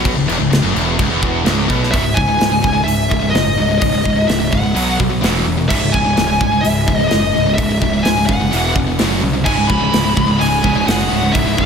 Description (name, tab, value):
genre	heavy metal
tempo	127 BPM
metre	4/4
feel	straight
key	C# minor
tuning	A4 = 440 Hz
part	heavy high-gain guitar	riff	0.0-11.7 s	C#2 to B3	-20 LUFS	left 9 dB	distortion
part	sludgy distorted guitar	riff	0.0-11.7 s	C#2 to B3	-20 LUFS	right 10 dB	overdrive, slapback echo
part	tight distorted guitar	riff	0.0-1.9, 9.5-11.7 s	C#2 to E4	-22 LUFS	equal	distortion, slapback echo
part	fuzz picked electric bass	bass	0.0-11.7 s	C#1 to B#1	-21 LUFS	equal	overdrive
part	tight metal drum kit	drums	0.1-11.7 s	crash cymbal, hi-hat, kick drum, snare drum	-19 LUFS	equal	none
part	high-gain lead guitar	melody	1.9-11.7 s	D#5 to B5	-18 LUFS	left 1 dB	distortion, slapback echo, tape echo
room	moderate lush hall reverb, RT60 2.0 s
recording	big arena sound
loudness	-13 LUFS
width	side -6 dB against mid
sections	0.0-1.9 A section; 1.9-11.7 B section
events	none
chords	0.0 C#m; 4.8 B5; 5.2 E5; 5.7 C#m; 8.5 E5; 9.0 F#5; 9.5 C#m